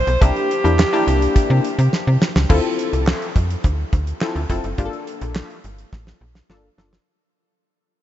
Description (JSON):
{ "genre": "early-eighties boogie funk", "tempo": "105 BPM", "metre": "4/4", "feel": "straight", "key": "unclear", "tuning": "A4 = 441 Hz", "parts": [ { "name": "breathy alto saxophone", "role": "melody", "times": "0.0-1.9 s", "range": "G4 to C5", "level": "-23 LUFS", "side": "right 1 dB", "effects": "analog delay" }, { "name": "slap-like FM bass", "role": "bass", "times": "0.0-7.0 s", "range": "F1 to C3", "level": "-19 LUFS", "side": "equal", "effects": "none" }, { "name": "damped 70s drum kit", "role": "drums", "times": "0.1-7.1 s", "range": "crash cymbal, handclaps, hi-hat, kick drum, snare drum", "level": "-20 LUFS", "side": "equal", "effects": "none" }, { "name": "funky polysynth comp", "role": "accompaniment", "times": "0.2-7.0 s", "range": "Bb3 to A4", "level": "-23 LUFS", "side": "left 3 dB", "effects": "chorus" } ], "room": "light reverb, small room ambience", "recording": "nothing above 7.8 kHz", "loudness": "-16 LUFS", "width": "side -12 dB against mid", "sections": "0.0-2.5 A section; 2.5-7.1 B section", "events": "drum fill 1.9-2.5, 5.9-7.1; fade-out 2.5-7.1", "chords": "0.2 C7; 2.5 Dm9; 4.8 Gm9" }